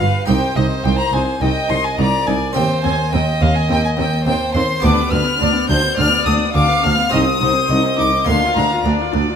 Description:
classical, baroque-style concerto movement with solo episodes; 105 BPM; 4/4; straight; C minor; A4 = 445 Hz
rich chamber violin section; melody; 0.0-8.9 s; Eb5 to G6; -24 LUFS; left 1 dB
rich violin; melody; 0.0-8.8 s; Eb5 to G6; -21 LUFS; left 3 dB
rich chamber violin section; second line; 0.0-9.4 s; B4 to F5; -22 LUFS; equal
dark chamber viola section; accompaniment; 0.0-9.4 s; B3 to F4; -23 LUFS; left 4 dB
harpsichord; accompaniment; 0.0-9.4 s; C2 to Bb4; -23 LUFS; right 1 dB
warm chamber cello section; bass; 0.0-9.2 s; C2 to Eb2; -22 LUFS; right 2 dB
warm chamber double bass section; bass; 0.0-9.2 s; C2 to Eb2; -22 LUFS; right 2 dB
moderate recital hall reverb, RT60 1.4 s; close, detailed microphones; -14 LUFS; side -7 dB against mid
0.0-9.4 A section
0.3 Cm; 2.6 Cm/Eb; 4.8 G7/D; 7.1 Cm; 8.3 Bb/D

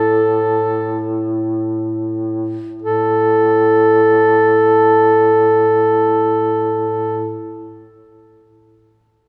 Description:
caucasian folk, Caucasian lament; free time; A4 = 440 Hz
warm duduk; melody; 0.0-7.4 s; A4; -15 LUFS; equal
mellow duduk; drone; 0.0-7.4 s; A2; -23 LUFS; equal
wet church reverb, RT60 3.4 s; -15 LUFS; mono
0.0-2.8 A section; 2.8-6.6 B section
slowing down 0.0-2.8

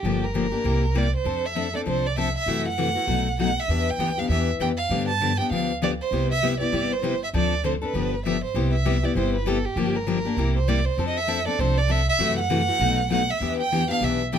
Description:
acoustic string swing (jazz manouche); 198 BPM; 4/4; swing 59% on 8ths; C major; A4 = 440 Hz
warm violin; melody; 0.0-14.4 s; G4 to A5; -26 LUFS; right 4 dB
picked steel-string acoustic guitar; accompaniment; 0.0-14.4 s; B2 to A4; -25 LUFS; left 5 dB
upright bass; bass; 0.0-14.4 s; G1 to G2; -26 LUFS; right 1 dB
light reverb; close, detailed microphones; -21 LUFS; side -8 dB against mid
0.0-8.6 A section; 8.6-14.4 A section
0.0 Gm7; 0.6 C7; 1.3 F6; 2.5 F#m7b5; 3.1 B7; 3.7 Em7; 4.9 G7; 6.1 Cmaj7; 7.3 Dm7; 7.9 G7; 8.6 Cmaj7; 9.8 Gm7; 10.4 C7; 11.0 F6; 12.2 F#m7b5; 12.8 B7; 13.4 Em7

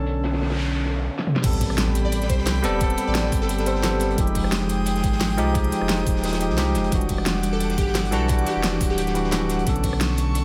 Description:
liquid drum and bass; 175 BPM; 4/4; swing 53% on 16ths; A dorian; A4 = 443 Hz
barky tine electric piano; accompaniment; 0.0-10.4 s; D3 to A4; -28 LUFS; equal; analog delay
airy breathy pad; sustained chords; 0.0-10.4 s; D3 to Eb6; -32 LUFS; equal; chorus, sidechain pumping
warm sub bass; bass; 0.0-10.4 s; D1 to C2; -28 LUFS; equal
crunchy breakbeat drum kit; drums; 0.1-10.4 s; hi-hat, snare drum; -37 LUFS; equal; high-pass filter on hats, low-pass filter on hats, high-pass filter on snare, low-pass filter on snare, high-pass filter on room, low-pass filter on room
noise sweep and impact; sound effects; 0.3-2.8 s; -33 LUFS; equal
pop drum kit; drums; 0.2-10.4 s; cabasa, crash cymbal, hi-hat, rim click, snare drum, toms; -30 LUFS; equal; low-pass filter on perc, low-pass filter on hats, low-pass filter on snare, low-pass filter on toms, low-pass filter on cymbals
electronic kick drum; drums; 1.4-9.9 s; -26 LUFS; equal
plucky unison lead; melody; 2.0-4.0, 7.5-9.4 s; G4 to D5; -34 LUFS; equal; ensemble chorus, diffuse ambient delay
moderate plate reverb, RT60 1.8 s; dreamy mix soaked in reverb; -22 LUFS; mono
0.0-1.4 A section; 1.4-10.4 B section
filter sweep on analog synth pad 0.0-1.4; filter sweep 0.0-1.4; noise sweep 0.3-1.4; drum fill 1.2; drop 1.4-10.4; impact 1.4-2.8
0.0 Bm9; 1.4 Am9; 4.2 Fm9; 6.9 Em9; 9.7 Bm9

